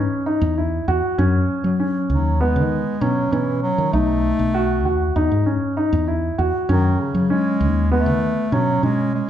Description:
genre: progressive instrumental, band music in an uneven meter.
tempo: 196 BPM (eighths).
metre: 9/8.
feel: straight.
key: F# dorian.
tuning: A4 = 439 Hz.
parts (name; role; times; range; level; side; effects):
warm bass clarinet; melody; 0.0-9.3 s; C#3 to A3; -22 LUFS; equal; none.
dark baby grand piano; arpeggios; 0.0-9.3 s; B3 to F#4; -21 LUFS; right 1 dB; none.
woody fretless electric bass; bass; 0.0-9.2 s; B1 to F#3; -20 LUFS; left 1 dB; none.
room: wet large studio reverb, RT60 1.2 s.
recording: band playing live in one room.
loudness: -17 LUFS.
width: side -10 dB against mid.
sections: 0.0-9.3 A section.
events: none.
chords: 0.0 E5; 1.2 F#sus2; 3.9 B7; 5.2 E6; 6.7 F#madd9.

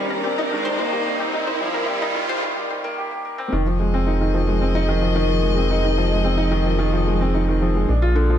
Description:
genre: piano and strings electronica.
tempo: 110 BPM.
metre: 4/4.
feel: straight.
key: F dorian.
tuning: A4 = 442 Hz.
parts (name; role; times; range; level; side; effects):
rich cello; melody; 0.0-2.4 s; F3 to Bb3; -29 LUFS; right 1 dB; digital delay.
dark string quartet; sustained chords; 0.0-8.4 s; Bb2 to Eb5; -27 LUFS; equal; none.
felt-muted upright piano; riff; 0.0-8.4 s; D3 to Bb4; -22 LUFS; equal; digital delay.
riser; sound effects; 0.0-2.4 s; none; -27 LUFS; right 2 dB; none.
analog pluck; arpeggios; 0.1-2.4 s; Eb4 to C5; -30 LUFS; left 2 dB; chorus, digital delay.
warm sub bass; bass; 3.5-8.4 s; F1 to Bb1; -20 LUFS; equal; none.
room: light reverb, small room ambience.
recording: high-pass filter.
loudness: -18 LUFS.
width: side -10 dB against mid.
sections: 0.0-3.5 A section; 3.5-8.4 B section.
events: build-up 0.0-3.5; riser 0.0-2.4; filter sweep on synth arpeggio sound 0.0-3.5; break 2.4-3.5; drop 3.5-8.4.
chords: 0.0 Cm7/Eb; 3.5 Fm7; 7.9 Bb.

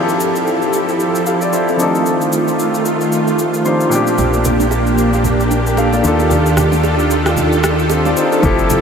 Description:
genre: amapiano.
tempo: 113 BPM.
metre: 4/4.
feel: swing 58% on 16ths.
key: unclear.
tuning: A4 = 440 Hz.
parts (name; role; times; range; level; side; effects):
warm grand piano; accompaniment; 0.0-8.8 s; Bb2 to C6; -17 LUFS; left 2 dB; none.
string machine, violas; sustained chords; 0.0-8.8 s; Eb3 to A4; -16 LUFS; right 1 dB; ensemble chorus, sidechain pumping.
afro-pop drum kit; drums; 0.1-8.8 s; kick drum, rim click, shaker; -24 LUFS; equal; none.
fingered electric bass; bass; 4.2-8.1 s; Bb1 to Eb2; -17 LUFS; equal; none.
congas and bongos; percussion; 4.2-8.8 s; none; -24 LUFS; right 8 dB; none.
hollow log drum bass; bass; 8.4-8.8 s; F1; -21 LUFS; equal; none.
room: wet huge ambient reverb, RT60 7.7 s.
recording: dreamy mix soaked in reverb.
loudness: -12 LUFS.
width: side -6 dB against mid.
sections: 0.0-8.4 A section.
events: grand piano fill 3.4-4.2.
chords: 0.0 Fmaj9; 1.8 F13; 3.9 Bb6; 6.0 Ebmaj9#11.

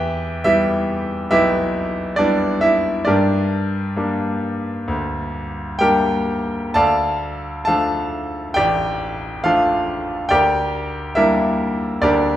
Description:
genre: classical, lyrical solo piano.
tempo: 63-71 BPM.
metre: 4/4.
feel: rubato.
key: unclear.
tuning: A4 = 440 Hz.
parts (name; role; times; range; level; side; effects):
bright grand piano; solo; 0.0-12.4 s; A1 to A5; -17 LUFS; equal; none.
room: wet recital hall reverb, RT60 1.6 s.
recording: recorded in a church or concert hall.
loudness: -17 LUFS.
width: side -12 dB against mid.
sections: 0.0-12.4 A section.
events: none.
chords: 0.0 Em; 3.1 Gm; 6.8 Dm; 10.3 Gm/D.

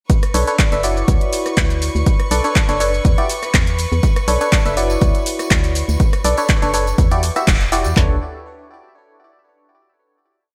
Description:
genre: piano house.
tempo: 122 BPM.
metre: 4/4.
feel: swing 54% on 16ths.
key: B minor.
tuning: A4 = 440 Hz.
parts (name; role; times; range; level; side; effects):
clear studio violin section; sustained chords; 0.1-8.0 s; B4 to C#6; -30 LUFS; equal; sidechain pumping.
punchy analog drum machine; drums; 0.1-8.1 s; handclaps, kick drum, toms; -18 LUFS; equal; none.
punchy analog drum machine; drums; 0.1-7.9 s; handclaps, hi-hat, rim click, shaker; -25 LUFS; equal; none.
barking FM electric piano; riff; 0.3-8.2 s; D4 to E5; -23 LUFS; equal; chorus, sidechain pumping, digital delay.
organ-like FM bass; bass; 0.3-8.2 s; E1 to E2; -22 LUFS; equal; sidechain pumping.
tambourine; percussion; 4.0-7.9 s; none; -38 LUFS; equal; none.
room: moderate lush hall reverb, RT60 1.7 s, digital ambience.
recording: bright 1980s-style digital production.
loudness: -16 LUFS.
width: mono.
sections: 0.1-8.0 drop; 8.0-9.9 final chord.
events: drop 0.1-8.0; band accent 7.5.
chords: 0.1 Bm9; 1.1 Dmaj9; 2.1 Bm9; 3.0 E5; 4.0 Bm9; 5.0 Dmaj9; 6.0 Bm9; 7.0 Em9; 8.0 Bm9.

